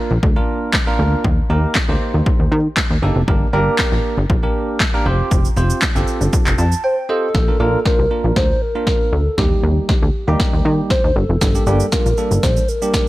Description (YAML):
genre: dance-pop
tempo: 118 BPM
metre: 4/4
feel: straight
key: Bb major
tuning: A4 = 440 Hz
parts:
  - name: bell-like tine electric piano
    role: accompaniment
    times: 0.0-13.1 s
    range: G3 to A5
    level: -22 LUFS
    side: right 2 dB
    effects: wide subtle chorus, sidechain pumping
  - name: plucky analog bass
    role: bass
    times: 0.1-12.6 s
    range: F1 to Eb3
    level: -17 LUFS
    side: equal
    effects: sidechain pumping
  - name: punchy analog drum machine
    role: drums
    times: 0.2-13.1 s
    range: handclaps, kick drum, shaker, snare drum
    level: -18 LUFS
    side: equal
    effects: none
  - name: hollow clarinet-like synth lead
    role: melody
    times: 6.8-13.1 s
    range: G4 to C5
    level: -20 LUFS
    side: equal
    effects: chorus, digital delay
room: little or no reverb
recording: none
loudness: -14 LUFS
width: side -17 dB against mid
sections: 0.0-7.3 A section; 7.3-13.1 B section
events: tine electric piano fill 6.3-7.3; break 6.8-7.3; build-up 7.3-13.1; drum fill 7.3-13.1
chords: 0.0 Bb; 1.2 Eb; 3.3 Gm; 5.1 Fsus2; 7.3 Bb; 9.4 Eb; 11.4 Gm